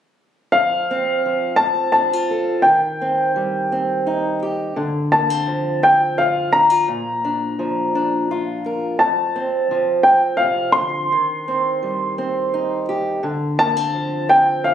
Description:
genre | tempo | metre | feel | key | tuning
acoustic folk duo or small band | 85 BPM | 3/4 | straight | F mixolydian | A4 = 441 Hz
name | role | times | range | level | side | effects
warm upright piano | melody | 0.5-14.7 s | F5 to C6 | -17 LUFS | left 1 dB | none
fingerpicked old ladder-braced acoustic guitar | accompaniment | 0.5-14.7 s | F2 to Bb4 | -22 LUFS | right 2 dB | none
room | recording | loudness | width
light reverb | recorded on a phone in the room, club reverb | -16 LUFS | side -10 dB against mid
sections
0.5-14.7 A section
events
none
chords
0.5 F; 2.7 Cm/Eb; 4.8 Dm7; 6.9 Bb; 9.0 F; 11.1 Cm/Eb; 13.2 Dm7

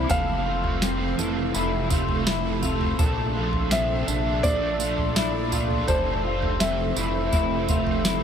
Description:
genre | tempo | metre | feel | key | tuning
dream pop | 83 BPM | 4/4 | straight | unclear | A4 = 440 Hz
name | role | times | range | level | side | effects
felt-muted upright piano | melody | 0.0-8.2 s | C5 to F5 | -29 LUFS | equal | tape echo
cranked stack guitar | accompaniment | 0.0-8.2 s | F2 to D4 | -30 LUFS | right 4 dB | overdrive, harmonic tremolo, ensemble chorus
ethereal airy pad | sustained chords | 0.0-8.2 s | Bb2 to E5 | -30 LUFS | right 3 dB | ensemble chorus, built-in reverb
electric guitar at the edge of break-up | arpeggios | 0.0-8.2 s | E3 to A4 | -29 LUFS | left 7 dB | analog chorus, tape echo
chorused synth bass | bass | 0.0-8.2 s | F1 to Bb1 | -28 LUFS | equal | none
soft vintage rhythm box | drums | 0.1-8.2 s | kick drum, snare drum, tambourine, toms | -26 LUFS | right 1 dB | overdrive
room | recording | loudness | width
light reverb | none | -21 LUFS | side -8 dB against mid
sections
0.0-8.2 A section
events
none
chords
0.1 Fmaj7; 3.0 Bbmaj7; 5.9 Fmaj7

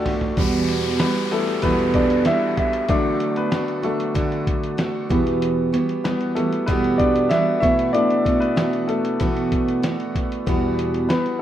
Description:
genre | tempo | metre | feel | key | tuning
piano-driven pop | 95 BPM | 4/4 | straight | E minor | A4 = 444 Hz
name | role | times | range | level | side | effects
warm concert grand piano | accompaniment | 0.0-11.4 s | D2 to A5 | -22 LUFS | left 3 dB | none
picked steel-string acoustic guitar | riff | 0.0-11.4 s | E2 to F#4 | -22 LUFS | right 3 dB | none
lo-fi sampler-style drum kit | drums | 0.1-11.4 s | hi-hat, kick drum, ride cymbal, snare drum, toms | -25 LUFS | left 1 dB | none
downlifter | sound effects | 0.4-5.4 s | none | -32 LUFS | left 2 dB | none
room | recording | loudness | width
light reverb, small room ambience | rough home demo mix | -18 LUFS | side -11 dB against mid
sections
0.4-11.4 A section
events
drum fill 0.0-0.4; grand piano fill 0.0-0.4; grand piano solo 0.4-11.4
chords
0.4 Emadd9; 2.9 D; 5.1 Emadd9; 7.6 B7sus4; 10.5 Emadd9

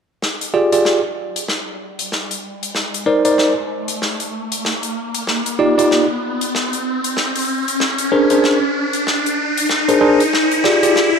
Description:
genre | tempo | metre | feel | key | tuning
glitch hop | 95 BPM | 4/4 | swing 60% on 16ths | F dorian | A4 = 442 Hz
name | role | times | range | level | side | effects
big rock drum kit | drums | 0.2-11.1 s | hi-hat, snare drum | -22 LUFS | left 2 dB | high-pass filter on hats, high-pass filter on snare, high-pass filter on room
riser | sound effects | 1.8-11.2 s | none | -20 LUFS | equal | none
bell-like tine electric piano | stabs | 0.5-11.1 s | D4 to D5 | -15 LUFS | equal | medium stereo tremolo, tape echo
room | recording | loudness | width
moderate lush hall reverb, RT60 2.0 s | none | -15 LUFS | side -6 dB against mid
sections
0.2-11.2 A section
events
build-up 0.2-11.2; drum fill 0.2-11.2; riser 1.8-11.2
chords
0.2 Fm69; 2.8 Cm9; 5.3 Ebmaj9; 7.8 Bb9; 10.3 Fm69

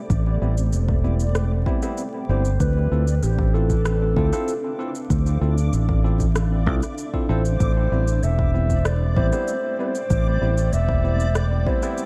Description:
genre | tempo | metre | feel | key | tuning
ambient dub | 96 BPM | 4/4 | straight | A minor | A4 = 440 Hz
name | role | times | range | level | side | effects
granular cloud pad | sustained chords | 0.0-12.1 s | A3 to G5 | -35 LUFS | equal | built-in reverb
backwards swelling texture | texture | 0.0-12.1 s | D5 | -39 LUFS | equal | built-in reverb
fingered electric bass | bass | 0.1-11.6 s | E1 to D2 | -22 LUFS | equal | none
electronic kick drum | drums | 0.1-11.8 s | none | -26 LUFS | equal | studio reverb
electronic shaker and rim click | drums | 0.1-12.1 s | none | -36 LUFS | equal | overdrive, studio reverb, dub echo
barky tine electric piano | stabs | 0.4-12.0 s | G3 to A4 | -32 LUFS | equal | vintage 12-bit sampler grit, dub echo
dark clarinet | melody | 2.3-12.0 s | G4 to E5 | -31 LUFS | equal | dub echo
room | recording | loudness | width
light reverb | vinyl crackle | -21 LUFS | mono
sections
0.0-12.1 A section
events
none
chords
0.0 Am7; 2.6 Dm7; 7.6 Am7

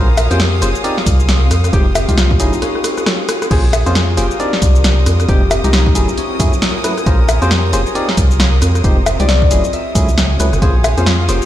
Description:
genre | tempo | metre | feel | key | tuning
UK garage, two-step garage | 135 BPM | 4/4 | swing 60% on 16ths | Bb dorian | A4 = 440 Hz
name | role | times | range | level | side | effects
Celtic harp | melody | 0.0-11.5 s | Db4 to Fb5 | -22 LUFS | left 5 dB | tape echo
bright studio violin section | sustained chords | 0.0-11.5 s | Bb4 to Eb6 | -26 LUFS | equal | sidechain pumping
barky tine electric piano | stabs | 0.0-11.4 s | F3 to D5 | -22 LUFS | equal | dub echo
organ-like FM bass | bass | 0.0-11.4 s | F1 to Gb2 | -14 LUFS | equal | none
ethereal airy pad | texture | 0.1-11.5 s | C4 to C6 | -25 LUFS | equal | ensemble chorus, built-in reverb, sidechain pumping
punchy analog drum machine | drums | 0.2-11.5 s | bongos, cabasa, crash cymbal, hi-hat, rim click, snare drum | -18 LUFS | equal | none
electronic kick drum | drums | 1.1-10.7 s | none | -14 LUFS | equal | none
room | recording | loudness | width
digital ambience | played on a big sound system in a bare room, stone room reverb | -11 LUFS | side -12 dB against mid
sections
0.0-11.5 A section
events
break 2.6-3.5; drum fill 2.6-3.5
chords
0.0 Bbm9; 0.8 Cm9; 1.5 Fm9; 2.4 Gbsus2; 3.5 Bbm9; 4.4 Cm9; 5.1 Fm9; 6.0 Gbm9; 7.1 Bbm9; 8.0 Cm9; 8.6 Fm9; 9.5 Gbm9; 10.6 Bbm9

